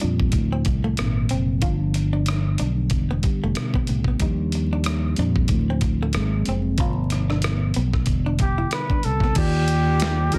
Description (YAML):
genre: R&B, neo-soul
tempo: 93 BPM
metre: 4/4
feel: swing 56% on 16ths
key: unclear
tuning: A4 = 442 Hz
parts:
  - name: vintage hollow-body jazz guitar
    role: second line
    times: 0.0-9.3 s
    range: A3 to F4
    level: -33 LUFS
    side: equal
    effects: none
  - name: mellow tine electric piano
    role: accompaniment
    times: 0.0-10.4 s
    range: A2 to D5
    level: -27 LUFS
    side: equal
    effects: none
  - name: fingered electric bass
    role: bass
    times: 0.0-10.4 s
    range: E1 to F2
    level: -26 LUFS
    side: equal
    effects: none
  - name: dusty soul sampler-style drum kit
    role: drums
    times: 0.0-10.4 s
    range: crash cymbal, hi-hat, kick drum, rim click, snare drum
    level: -27 LUFS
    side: equal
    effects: soft clipping on snare
  - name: warm flugelhorn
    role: melody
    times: 8.4-10.4 s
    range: G4 to B4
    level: -28 LUFS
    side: equal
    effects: plate reverb
room: light reverb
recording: dense, heavily limited modern master, vinyl crackle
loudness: -22 LUFS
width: mono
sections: 0.0-9.4 A section; 9.4-10.4 B section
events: tine electric piano solo 0.0-9.4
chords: 0.3 Dm9; 1.0 G#9; 1.6 G7; 2.9 Em7; 4.2 Ebmaj9; 5.5 Dm9; 6.1 G#9; 6.8 G7; 8.1 Em7; 9.4 Ebmaj9